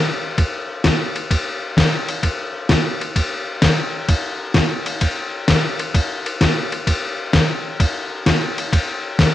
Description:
country; 129 BPM; 4/4; swing 68% on 8ths
trip hop sampler-style drum kit; drums; 0.4-9.3 s; hi-hat, kick drum, ride cymbal, snare drum; -17 LUFS; left 1 dB
light reverb; 1960s-style stereo, tape saturation; -17 LUFS; side -13 dB against mid
0.0-9.3 A section

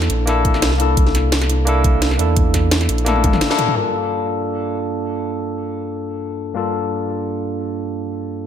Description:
liquid drum and bass; 172 BPM; 4/4; swing 54% on 16ths; G minor; A4 = 440 Hz
barky tine electric piano; accompaniment; 0.0-8.5 s; G2 to A4; -20 LUFS; moving between left 6 dB and right 5 dB; overdrive, auto-pan, low-pass filter, diffuse ambient delay
sub bass with octave; bass; 0.0-3.4 s; G1 to E2; -18 LUFS; equal
drum and bass drum kit; drums; 0.0-3.7 s; hi-hat, snare drum, toms; -21 LUFS; equal; overdrive
electronic kick drum; drums; 0.4-3.3 s; -18 LUFS; equal
moderate plate reverb, RT60 1.9 s, digital ambience; dreamy mix soaked in reverb; -16 LUFS; side -9 dB against mid
0.0-3.8 A section; 3.8-8.5 B section
drop 0.0-3.8; drum fill 3.1-3.8; band accent 3.5; filter sweep on tine electric piano 3.8-8.5
0.0 C13; 3.8 Gm7

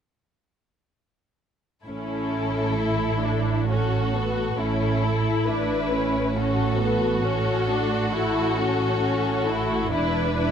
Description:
classical; 67 BPM; 3/4; rubato; A major; A4 = 440 Hz
warm symphonic violin section; melody; 1.9-10.5 s; A4 to B4; -29 LUFS; left 5 dB
warm symphonic violin section; second line; 1.9-10.5 s; E4 to F#4; -27 LUFS; left 2 dB
rich symphonic viola section; accompaniment; 1.9-10.5 s; B3 to E4; -27 LUFS; right 1 dB
clear symphonic cello section; bass; 1.9-10.5 s; E2 to A2; -29 LUFS; right 2 dB
rich symphonic double bass section; bass; 1.9-10.5 s; E1 to A1; -28 LUFS; right 4 dB
moderate concert hall reverb, RT60 2.0 s; close, detailed microphones; -21 LUFS; side -8 dB against mid
1.9-10.5 A section
1.9 A; 9.9 E7(no3)

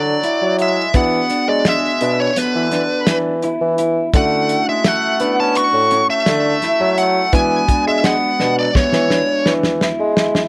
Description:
progressive instrumental, band music in an uneven meter; 169 BPM (eighths); 9/8; straight; A4 = 442 Hz
smooth overdriven lead guitar; melody; 0.0-9.5 s; B4 to C#6; -20 LUFS; equal
trombone with straight mute; second line; 0.0-9.5 s; D3 to F#4; -29 LUFS; equal
bell-like tine electric piano; accompaniment; 0.0-10.5 s; G#3 to G#4; -29 LUFS; equal
mellow electric guitar; arpeggios; 0.0-10.5 s; B3 to E4; -26 LUFS; equal
dark bassoon; bass; 0.0-10.4 s; A2 to B3; -21 LUFS; equal
warm soul drum kit; drums; 0.2-10.5 s; hi-hat, kick drum, snare drum; -21 LUFS; equal
light reverb, small room ambience; vinyl crackle; -16 LUFS; mono
0.0-10.5 A section
drum fill 8.4-10.5
0.0 D; 0.9 E7; 4.1 Dmaj7; 7.3 E7

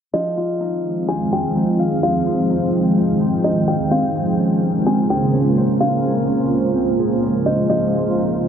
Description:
hip hop; 127 BPM; 4/4; half-time; F minor; A4 = 440 Hz
kalimba; melody; 0.1-8.5 s; Eb5 to Ab5; -23 LUFS; equal; tape echo
granular cloud pad; sustained chords; 0.9-8.5 s; Db3 to G5; -17 LUFS; right 1 dB; built-in reverb
Celtic harp; arpeggios; 0.1-8.5 s; F3 to F5; -24 LUFS; left 1 dB; tape echo
drifting glass-harmonics texture; texture; 0.9-8.5 s; Db4 to Ab5; -31 LUFS; right 1 dB; chorus, built-in reverb
moderate lush hall reverb, RT60 2.7 s; dark, warm production, low-pass filter; -16 LUFS; side -8 dB against mid
0.1-8.5 A section
filter sweep 0.1-8.5
0.1 Fm7; 3.9 Bbm9; 7.7 Fm7

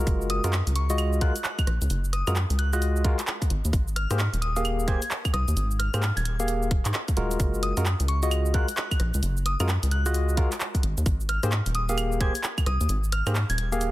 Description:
UK garage, two-step garage; 131 BPM; 4/4; swing 63% on 16ths; F# major; A4 = 440 Hz
barky tine electric piano; stabs; 0.0-13.9 s; G#3 to E#5; -31 LUFS; equal; medium stereo tremolo, tape echo
rubbery square bass; bass; 0.0-13.9 s; D#1 to G#2; -25 LUFS; equal
electronic kick drum; drums; 0.1-12.6 s; -25 LUFS; equal; overdrive
punchy analog drum machine; drums; 0.1-13.9 s; claves, handclaps, hi-hat, rim click, shaker; -31 LUFS; right 1 dB
glassy synth bell; melody; 0.3-13.7 s; C#6 to G#6; -33 LUFS; equal; chorus, tremolo, tape echo
little or no reverb; dense, heavily limited modern master; -23 LUFS; side -16 dB against mid
0.0-13.9 A section
0.1 F#maj9; 3.5 G#maj7sus2; 7.4 F#maj9; 10.8 G#maj9

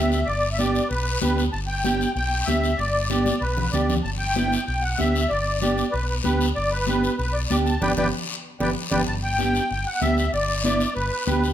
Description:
latin, cumbia; 191 BPM; 4/4; straight; G major; A4 = 439 Hz
musette accordion; melody; 0.0-11.5 s; B4 to A5; -25 LUFS; left 1 dB
mellow electric guitar; accompaniment; 0.0-11.5 s; B3 to G4; -26 LUFS; right 4 dB
fingered electric bass; bass; 0.0-11.5 s; G1 to D2; -26 LUFS; equal
guiro; percussion; 0.1-11.5 s; -32 LUFS; left 6 dB
congas; percussion; 0.3-11.4 s; -30 LUFS; left 4 dB
moderate large studio reverb, RT60 1.3 s; close, detailed microphones; -20 LUFS; side -10 dB against mid
0.0-9.1 A section; 9.1-11.5 B section
drum fill 3.3-4.0, 8.6-9.1; band accent 7.8-9.1
0.0 G

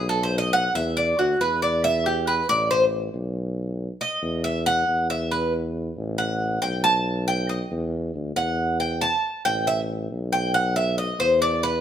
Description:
latin, Cuban son and guajira; 138 BPM; 4/4; straight; E minor; A4 = 438 Hz
Cuban tres; arpeggios; 0.0-11.8 s; F#4 to A5; -22 LUFS; equal
warm tuba; bass; 0.0-11.8 s; A1 to E2; -27 LUFS; equal
moderate studio reverb, RT60 0.9 s; heard from further back in the room; -21 LUFS; side -9 dB against mid
0.0-11.8 A section
Cuban tres solo 0.0-11.8
0.1 Badd11; 1.0 A13sus4; 2.7 Amadd9; 3.6 B; 4.4 Asus2; 6.2 Gmaj9/A; 7.1 Baug7; 7.9 Emadd9; 9.7 Emadd11/A; 10.5 Badd11

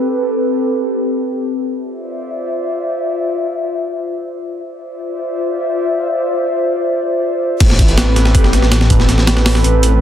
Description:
drum and bass, jungle; free time; A minor; A4 = 440 Hz
warbly tape-like pad; sustained chords; 0.0-10.0 s; C4 to E5; -17 LUFS; left 1 dB; chorus, built-in reverb, vintage 12-bit sampler grit
detuned saw bass; bass; 7.6-10.0 s; A1; -13 LUFS; equal
breakbeat sampler-style drum kit; drums; 7.6-9.9 s; crash cymbal, hi-hat, kick drum, snare drum; -13 LUFS; equal
light reverb, digital ambience; dense, heavily limited modern master; -13 LUFS; side -10 dB against mid
0.0-7.6 A section; 7.6-10.0 B section
filter sweep on ambient pad 0.0-7.6; drop 7.6-10.0
0.0 Am9; 1.7 Dm9; 7.6 Am9

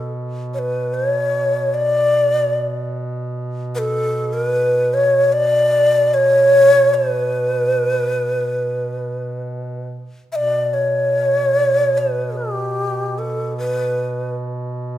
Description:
caucasian folk, Caucasian lament; free time; B minor; A4 = 440 Hz
breathy long shakuhachi; melody; 0.0-14.3 s; G4 to E5; -16 LUFS; left 1 dB
warm duduk; drone; 0.0-15.0 s; B2; -26 LUFS; right 1 dB
moderate recital hall reverb, RT60 1.6 s; minimal, uncompressed stereo recording; -16 LUFS; side -12 dB against mid
0.0-10.3 A section; 10.3-15.0 B section

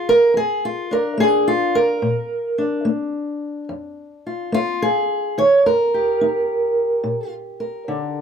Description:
acoustic country blues, solo or duo; 72 BPM; 4/4; swing 67% on 8ths; Bb major; A4 = 440 Hz
fingerpicked old ladder-braced acoustic guitar; solo; 0.0-8.2 s; F2 to Db5; -17 LUFS; right 1 dB
light reverb; close, detailed microphones; -17 LUFS; side -7 dB against mid
0.0-8.2 A section
steel-string acoustic guitar solo 0.0-8.2
0.0 Bb; 5.4 Eb

